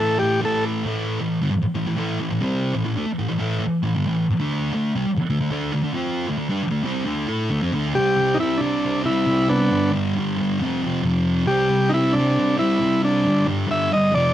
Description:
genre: rock.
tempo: 135 BPM.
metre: 4/4.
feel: straight.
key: A minor.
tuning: A4 = 440 Hz.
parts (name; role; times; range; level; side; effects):
overdriven combo organ; melody; 0.0-0.6, 8.0-14.3 s; B3 to E5; -20 LUFS; equal; cassette tape.
thick fuzz guitar; riff; 0.0-14.3 s; F2 to A4; -21 LUFS; equal; distortion, cassette tape.
room: light reverb, digital ambience.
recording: home recording on cassette.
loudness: -19 LUFS.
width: side -12 dB against mid.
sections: 0.9-7.9 A section; 7.9-14.3 B section.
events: none.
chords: 0.0 A5; 0.9 Am; 4.4 D5; 7.9 C; 9.7 G; 10.6 F5; 11.5 C; 13.3 G5.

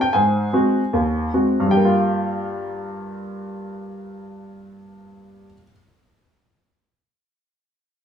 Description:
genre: solo jazz.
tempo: 151 BPM.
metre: 4/4.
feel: swing 66% on 8ths.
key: G minor.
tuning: A4 = 440 Hz.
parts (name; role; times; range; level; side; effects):
warm upright piano; solo; 0.0-5.7 s; Eb2 to Ab5; -19 LUFS; equal; none.
room: moderate studio reverb, RT60 0.9 s.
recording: band playing live in one room, small room ambience.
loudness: -17 LUFS.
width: side -8 dB against mid.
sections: 0.0-1.7 A section; 1.7-4.9 B section.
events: none.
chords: 0.1 Ab7; 1.7 Gm7.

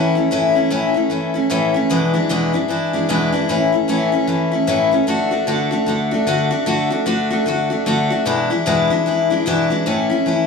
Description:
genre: rock.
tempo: 151 BPM.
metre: 4/4.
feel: swing 61% on 8ths.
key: A major.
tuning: A4 = 440 Hz.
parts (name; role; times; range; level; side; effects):
picked steel-string acoustic guitar; solo; 0.0-10.5 s; E2 to F#4; -15 LUFS; left 2 dB; none.
room: moderate studio reverb, RT60 0.7 s.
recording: small room ambience.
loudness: -15 LUFS.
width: side -5 dB against mid.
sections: 0.0-9.9 A section.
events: none.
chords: 0.0 A; 1.9 E7; 3.5 A; 5.1 D; 8.3 E7; 9.9 A.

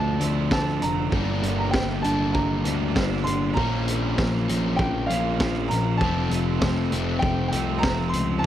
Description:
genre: indie rock.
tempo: 98 BPM.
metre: 4/4.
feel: straight.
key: F major.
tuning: A4 = 435 Hz.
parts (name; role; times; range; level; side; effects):
warm upright piano; melody; 0.0-8.5 s; F5 to C6; -30 LUFS; right 1 dB; tape echo.
biting overdriven guitar; riff; 0.0-8.5 s; F2 to D4; -29 LUFS; right 11 dB; wide subtle chorus.
crunchy overdriven guitar; riff; 0.0-8.5 s; F2 to D4; -27 LUFS; left 6 dB; none.
fuzz picked electric bass; bass; 0.0-8.4 s; F1 to D2; -27 LUFS; equal; overdrive.
raw garage drum kit; drums; 0.2-8.3 s; hi-hat, kick drum, snare drum; -27 LUFS; equal; none.
room: little or no reverb.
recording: dry, close 1970s-style studio recording.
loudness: -21 LUFS.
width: side -11 dB against mid.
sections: 0.0-8.5 A section.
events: none.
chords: 0.0 Dm; 1.1 Gm; 3.6 Bbm; 6.0 F.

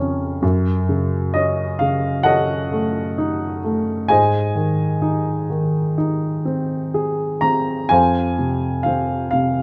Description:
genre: classical, lyrical solo piano.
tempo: 64 BPM.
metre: 4/4.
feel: rubato.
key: unclear.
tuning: A4 = 440 Hz.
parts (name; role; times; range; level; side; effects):
dark upright piano; solo; 0.0-9.6 s; F2 to Bb5; -20 LUFS; equal; none.
room: moderate recital hall reverb, RT60 1.4 s.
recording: dark, warm production.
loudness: -20 LUFS.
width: mono.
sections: 0.0-9.6 A section.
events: none.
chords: 0.4 Gbm6; 4.1 Ab; 7.9 Fm.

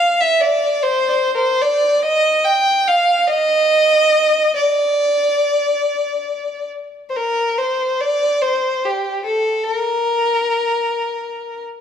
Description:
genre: celtic folk.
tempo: 47 BPM (dotted quarters).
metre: 6/8.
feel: uneven beats, rubato.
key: unclear.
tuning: A4 = 438 Hz.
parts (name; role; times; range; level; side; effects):
dark fiddle; solo; 0.0-11.6 s; G4 to G5; -15 LUFS; equal; none.
room: light reverb.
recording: none.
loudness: -15 LUFS.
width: side -8 dB against mid.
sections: 0.0-7.2 A section; 7.2-11.8 B section.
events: none.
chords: none.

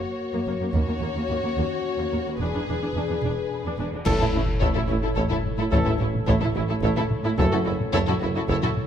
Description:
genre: cinematic, epic orchestral film score.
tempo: 108 BPM.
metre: 3/4.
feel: straight.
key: unclear.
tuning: A4 = 441 Hz.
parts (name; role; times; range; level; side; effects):
warm symphonic violin section; melody; 0.0-8.7 s; E4 to Db5; -32 LUFS; left 5 dB; none.
warm symphonic violin section; second line; 0.0-8.7 s; C#4 to A4; -33 LUFS; left 3 dB; none.
warm French horn section; sustained chords; 0.0-7.6 s; Bb3 to G#4; -32 LUFS; left 5 dB; none.
dark symphonic viola section; accompaniment; 0.3-8.7 s; Bb3 to E4; -31 LUFS; right 2 dB; none.
dark symphonic cello section; bass; 0.3-8.7 s; Eb2 to A2; -30 LUFS; right 2 dB; none.
warm studio double bass section; bass; 0.5-8.5 s; E1 to Eb2; -30 LUFS; right 3 dB; none.
taiko ensemble; drums; 0.7-8.9 s; none; -28 LUFS; left 1 dB; none.
cymbal swell, clash cymbals and concert bass drum; percussion; 0.7-5.1 s; none; -31 LUFS; equal; none.
pipe organ, stopped flute; sustained chords; 4.0-8.9 s; A3 to C#5; -32 LUFS; equal; none.
dark trombone section; sustained chords; 4.1-7.6 s; E3 to A3; -36 LUFS; right 2 dB; none.
clear trumpet; stabs; 4.1-7.6 s; A4; -33 LUFS; equal; none.
clear tuba; bass; 4.1-8.5 s; F#1 to A1; -31 LUFS; right 4 dB; none.
room: moderate concert hall reverb, RT60 2.0 s.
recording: dark, warm production.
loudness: -22 LUFS.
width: side -9 dB against mid.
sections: 0.0-4.1 A section; 4.1-8.9 B section.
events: band accent 4.1-4.6.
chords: 0.0 Gb; 0.7 Ebm7; 2.4 E7; 4.1 A; 7.4 F#m7.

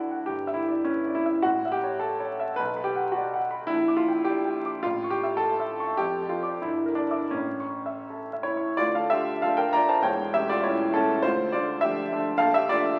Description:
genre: classical, romantic character piece for solo piano.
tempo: 78-109 BPM.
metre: 2/4.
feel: rubato.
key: D minor from 3.7 s.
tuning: A4 = 440 Hz.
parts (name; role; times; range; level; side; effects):
clear concert grand piano; solo; 0.0-13.0 s; E1 to D6; -26 LUFS; equal; none.
room: wet recital hall reverb, RT60 1.6 s.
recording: very old 78 rpm record, vinyl crackle.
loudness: -26 LUFS.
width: mono.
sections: 0.0-8.8 A section; 8.8-13.0 B section.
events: none.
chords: 0.3 G6; 1.5 A; 2.6 Bm; 3.7 Gm/Bb; 4.8 A; 6.0 Dm/F; 6.6 Em7b5/G; 7.3 A; 8.8 Dm; 10.1 A7/E; 11.3 Dm; 12.4 Bbmaj7.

